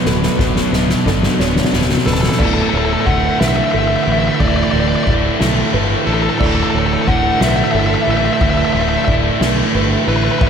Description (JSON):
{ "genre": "post-rock", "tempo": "60 BPM (dotted quarters)", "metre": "6/8", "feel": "straight", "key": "D major", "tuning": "A4 = 442 Hz", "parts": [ { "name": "deep dark ambient pad", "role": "sustained chords", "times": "0.0-10.5 s", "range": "E3 to B4", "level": "-27 LUFS", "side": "equal", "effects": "chorus, built-in reverb" }, { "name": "electric guitar through a small old amp", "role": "arpeggios", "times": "0.0-2.4 s", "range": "B2 to B4", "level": "-25 LUFS", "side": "left 4 dB", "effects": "harmonic tremolo, diffuse ambient delay" }, { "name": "felt-muted upright piano", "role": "arpeggios", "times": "0.0-10.5 s", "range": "A4 to E5", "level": "-28 LUFS", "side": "right 4 dB", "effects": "diffuse ambient delay" }, { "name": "distorted electric guitar", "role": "riff", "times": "0.0-10.5 s", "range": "D2 to E4", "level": "-20 LUFS", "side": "left 10 dB", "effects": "distortion" }, { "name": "thick fuzz guitar", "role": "riff", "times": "0.0-10.5 s", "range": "D2 to E4", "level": "-19 LUFS", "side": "right 9 dB", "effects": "distortion" }, { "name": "growling fingered electric bass", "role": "bass", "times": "0.1-10.5 s", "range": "D1 to B1", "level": "-20 LUFS", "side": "left 1 dB", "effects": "overdrive" }, { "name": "soft-mallet drum kit", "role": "drums", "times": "0.1-10.5 s", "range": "crash cymbal, kick drum, ride cymbal, snare drum", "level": "-19 LUFS", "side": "equal", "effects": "none" }, { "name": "dark smooth lead guitar", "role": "melody", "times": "2.1-10.5 s", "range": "A4 to F#5", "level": "-20 LUFS", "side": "left 1 dB", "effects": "overdrive, diffuse ambient delay" } ], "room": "moderate lush hall reverb, RT60 2.7 s", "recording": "dreamy mix soaked in reverb", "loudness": "-12 LUFS", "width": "side -7 dB against mid", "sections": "0.0-2.4 A section; 2.4-10.5 B section", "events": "build-up 0.0-2.4; drum fill 0.0-2.4", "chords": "0.0 Bm7/D; 2.4 Dsus2", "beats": "| 0.40 1.40 | 2.40 3.40 | 4.40 5.40 | 6.41 7.41 | 8.41 9.41 | 10.41" }